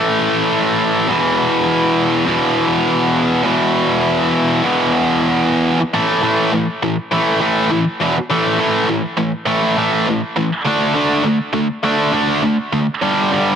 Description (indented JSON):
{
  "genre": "punk",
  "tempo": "203 BPM",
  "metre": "4/4",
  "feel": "straight",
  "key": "unclear",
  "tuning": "A4 = 440 Hz",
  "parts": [
    { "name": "tight distorted guitar", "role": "solo", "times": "0.0-13.6 s", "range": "E2 to D4", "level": "-14 LUFS", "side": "equal", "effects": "distortion, tape echo" }
  ],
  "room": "light reverb",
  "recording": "heavily compressed radio sound, multiband compression",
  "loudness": "-14 LUFS",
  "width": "side -8 dB against mid",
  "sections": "0.0-5.9 A section; 5.9-13.6 B section",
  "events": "half time 0.0-5.9",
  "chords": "0.0 A5; 1.1 E5; 5.9 A5; 8.0 E5; 8.2 N.C.; 8.3 A5; 10.5 N.C.; 10.7 D5; 12.9 G5",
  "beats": "| 0.04 0.34 0.63 0.93 | 1.22 1.52 1.81 2.11 | 2.40 2.70 2.99 3.29 | 3.58 3.88 4.17 4.46 | 4.76 5.05 5.35 5.64 | 5.94 6.23 6.53 6.82 | 7.12 7.41 7.71 8.00 | 8.30 8.59 8.89 9.18 | 9.48 9.77 10.07 10.36 | 10.66 10.95 11.25 11.54 | 11.84 12.13 12.43 12.72 | 13.02 13.31"
}